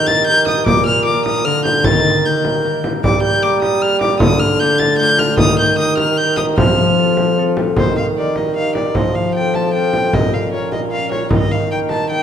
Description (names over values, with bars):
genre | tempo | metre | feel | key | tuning
classical, renaissance-style consort dance | 152 BPM | 3/4 | straight | unclear | A4 = 440 Hz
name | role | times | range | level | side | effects
rich violin | melody | 0.0-12.2 s | C5 to A6 | -18 LUFS | left 2 dB | none
concert harp | accompaniment | 0.0-12.2 s | Bb2 to D5 | -20 LUFS | left 7 dB | none
warm bassoon | bass | 0.0-12.2 s | Bb2 to G3 | -19 LUFS | right 4 dB | none
frame drum | percussion | 0.1-12.1 s | none | -19 LUFS | right 1 dB | none
room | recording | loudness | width
wet recital hall reverb, RT60 1.7 s | none | -13 LUFS | side -8 dB against mid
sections
0.0-7.8 A section; 7.8-12.2 B section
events
none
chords
0.0 Eb; 0.7 Bb; 1.8 Eb; 3.0 Gm; 4.2 Dm; 5.4 Eb; 6.6 F; 7.8 Eb; 9.0 F; 10.1 Bbm; 11.3 Eb